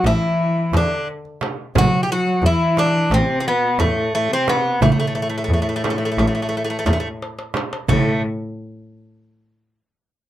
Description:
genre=Turkish makam ensemble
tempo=176 BPM (eighths)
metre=9/8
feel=straight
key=A makam huseyni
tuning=A4 = 442 Hz
part: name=Greek bouzouki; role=melody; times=0.0-8.2 s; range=A3 to G4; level=-20 LUFS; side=equal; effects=none
part: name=bright cello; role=second line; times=0.0-8.2 s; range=A2 to F#3-27c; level=-23 LUFS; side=left 2 dB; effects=none
part: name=clear double bass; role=bass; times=0.0-8.0 s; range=A1 to E2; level=-20 LUFS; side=equal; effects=none
part: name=frame drum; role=percussion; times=0.0-8.2 s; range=none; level=-24 LUFS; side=right 3 dB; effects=none
part: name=darbuka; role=percussion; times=0.1-8.2 s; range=none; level=-24 LUFS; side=right 1 dB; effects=none
room=moderate small room reverb, RT60 0.5 s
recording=dark, warm production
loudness=-17 LUFS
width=side -13 dB against mid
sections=0.0-7.9 A section; 7.9-10.3 B section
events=drum fill 7.2-7.9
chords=none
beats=0.05 0.39 0.73 1.07 1.42 | 1.76 2.10 2.44 2.78 3.12 3.46 3.81 4.15 4.49 | 4.83 5.17 5.51 5.85 6.19 6.54 6.88 7.22 7.56 | 7.90

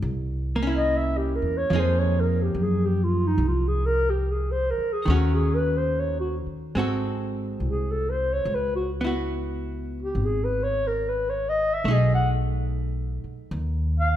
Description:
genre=jazz ballad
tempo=71 BPM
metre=4/4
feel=swing 66% on 8ths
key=unclear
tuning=A4 = 440 Hz
part: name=archtop guitar, miked and amplified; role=accompaniment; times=0.0-14.2 s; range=Eb3 to A4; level=-29 LUFS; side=right 1 dB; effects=none
part: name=upright bass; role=bass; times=0.0-14.2 s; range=Ab1 to Gb2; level=-25 LUFS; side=equal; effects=none
part: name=breathy clarinet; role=melody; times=0.8-14.2 s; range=Eb4 to F#5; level=-25 LUFS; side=left 1 dB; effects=none
room=moderate scoring stage reverb, RT60 1.8 s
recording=recorded in a church or concert hall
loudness=-22 LUFS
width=side -11 dB against mid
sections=0.0-14.2 A section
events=clarinet solo 0.0-14.2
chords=0.0 C7b9; 1.7 Fm7; 5.1 Ebm7b5; 6.7 Ab7b9; 8.5 Dbm7; 11.8 B6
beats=0.03 0.87 | 1.71 2.55 3.39 4.23 | 5.07 5.91 6.75 7.60 | 8.45 9.30 10.15 11.00 | 11.85 12.68 13.52

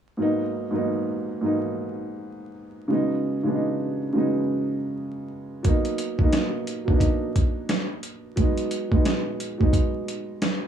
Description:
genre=hip hop, boom-bap hip-hop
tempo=88 BPM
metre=4/4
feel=swing 60% on 16ths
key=unclear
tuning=A4 = 440 Hz
part: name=dark upright piano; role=accompaniment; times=0.2-10.7 s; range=G#2 to D#4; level=-25 LUFS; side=right 1 dB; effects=cassette tape, high-pass filter, low-pass filter, plate reverb
part: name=boom bap sampler-style drum kit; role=drums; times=5.6-10.6 s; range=hi-hat, kick drum, snare drum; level=-22 LUFS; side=equal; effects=none
room=moderate studio reverb, RT60 0.7 s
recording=vinyl crackle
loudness=-22 LUFS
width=side -8 dB against mid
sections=0.2-5.6 A section; 5.6-10.7 B section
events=none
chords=0.2 G#m9; 2.9 C#9sus4; 5.6 Bmaj7/F#; 8.4 B6/F#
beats=| 0.19 0.87 1.56 2.24 | 2.92 3.60 4.28 4.96 | 5.65 6.33 7.01 7.69 | 8.37 9.06 9.74 10.42

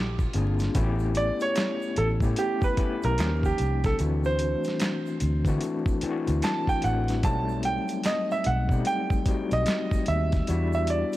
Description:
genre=R&B, neo-soul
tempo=74 BPM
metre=4/4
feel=swing 63% on 16ths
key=unclear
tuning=A4 = 440 Hz
part: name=electric guitar through a small old amp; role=second line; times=0.0-0.7 s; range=E#4 to G4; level=-43 LUFS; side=right 4 dB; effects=slapback echo
part: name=vintage muted fingered electric bass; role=bass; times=0.0-11.0 s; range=G1 to D3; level=-26 LUFS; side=equal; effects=none
part: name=dusty soul sampler-style drum kit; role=drums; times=0.2-11.2 s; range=handclaps, hi-hat, kick drum, snare drum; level=-28 LUFS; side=equal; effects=none
part: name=egg shaker and finger snaps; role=percussion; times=0.2-11.2 s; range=none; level=-46 LUFS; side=right 6 dB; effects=none
part: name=overdriven tine electric piano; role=accompaniment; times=0.3-11.2 s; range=E3 to G#4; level=-30 LUFS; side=left 4 dB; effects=fast tremolo
part: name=clear baby grand piano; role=melody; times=1.2-11.2 s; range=G4 to A5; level=-28 LUFS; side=right 2 dB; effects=none
room=light reverb, small room ambience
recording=dark, warm production, vinyl crackle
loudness=-23 LUFS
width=side -15 dB against mid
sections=0.0-11.2 A section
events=grand piano solo 0.0-11.2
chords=0.0 A#9; 0.7 A9; 3.2 D#9; 4.0 D7; 7.2 B7b9b13; 10.5 Em9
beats=| 0.75 1.56 2.37 3.18 | 3.99 4.80 5.61 6.42 | 7.23 8.04 8.86 9.67 | 10.48

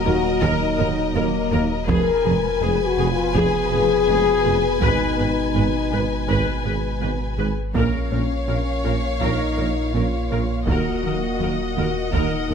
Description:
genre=cinematic, hybrid orchestral and electronic film score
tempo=82 BPM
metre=4/4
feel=straight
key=Eb minor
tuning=A4 = 440 Hz
part: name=rich symphonic violin section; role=melody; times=0.0-12.5 s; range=Eb5 to Ab5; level=-31 LUFS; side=left 4 dB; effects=none
part: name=warm symphonic violin section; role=second line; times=0.0-12.5 s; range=Bb4 to Eb5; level=-29 LUFS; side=left 4 dB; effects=none
part: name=warm French horn section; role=sustained chords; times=0.0-12.5 s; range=Bb3 to Bb4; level=-23 LUFS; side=left 6 dB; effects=none
part: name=warm trombone section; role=sustained chords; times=0.0-12.5 s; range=Bb2 to Bb3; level=-29 LUFS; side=right 6 dB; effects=none
part: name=pure sine sub bass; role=bass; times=0.0-12.5 s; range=Eb1 to Bb1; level=-28 LUFS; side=equal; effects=none
part: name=warm symphonic viola section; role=accompaniment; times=0.1-12.5 s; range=Ab4 to Cb5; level=-30 LUFS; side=equal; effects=none
part: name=tight sequenced synth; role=arpeggios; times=0.1-12.5 s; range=Eb3 to Bb4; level=-31 LUFS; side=right 1 dB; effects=chorus, ping-pong delay
part: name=mellow tuba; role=bass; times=0.1-12.5 s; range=F1 to Eb2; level=-29 LUFS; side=right 6 dB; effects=none
part: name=warm studio double bass section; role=bass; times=0.1-12.5 s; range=F1 to Eb2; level=-29 LUFS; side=right 4 dB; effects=none
part: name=warm symphonic cello section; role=bass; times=0.1-12.5 s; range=Eb2 to Bb2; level=-29 LUFS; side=right 4 dB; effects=none
part: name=taiko ensemble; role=drums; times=0.4-12.5 s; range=none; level=-28 LUFS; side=equal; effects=none
room=light reverb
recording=close, detailed microphones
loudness=-18 LUFS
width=side -7 dB against mid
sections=0.0-12.5 A section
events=none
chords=0.0 Ebm; 1.9 Fdim; 4.8 Abm; 7.7 Bbm; 10.7 Ebm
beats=0.42 1.15 | 1.88 2.62 3.35 4.08 | 4.81 5.54 6.27 7.00 | 7.74 8.47 9.20 9.93 | 10.66 11.39 12.13

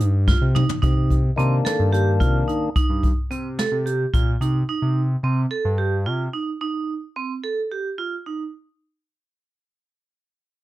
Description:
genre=progressive instrumental, band music in an uneven meter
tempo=218 BPM (eighths)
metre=7/8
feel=straight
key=C dorian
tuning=A4 = 438 Hz
part: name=vibraphone with hard mallets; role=arpeggios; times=0.0-8.4 s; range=C4 to A4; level=-25 LUFS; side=right 5 dB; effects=none
part: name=smooth synth bass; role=bass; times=0.0-6.3 s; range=G2 to C3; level=-21 LUFS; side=equal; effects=none
part: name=jazz brush drum kit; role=drums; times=0.0-4.5 s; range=hi-hat, kick drum, snare drum, toms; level=-22 LUFS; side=equal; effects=none
part: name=percussive tonewheel organ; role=accompaniment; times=1.4-2.7 s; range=Eb3 to D4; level=-24 LUFS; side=left 5 dB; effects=overdrive
room=light reverb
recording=dark, warm production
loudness=-19 LUFS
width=side -16 dB against mid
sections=0.8-8.5 A section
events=drum fill 0.3-0.8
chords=0.0 Cm; 0.8 Cm7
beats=0.00 0.28 0.55 | 0.83 1.10 1.38 1.65 1.93 2.21 2.48 | 2.75 3.03 3.31 3.58 3.86 4.13 4.41 | 4.68 4.96 5.23 5.51 5.78 6.06 6.33 | 6.61 6.88 7.16 7.43 7.71 7.98 8.26

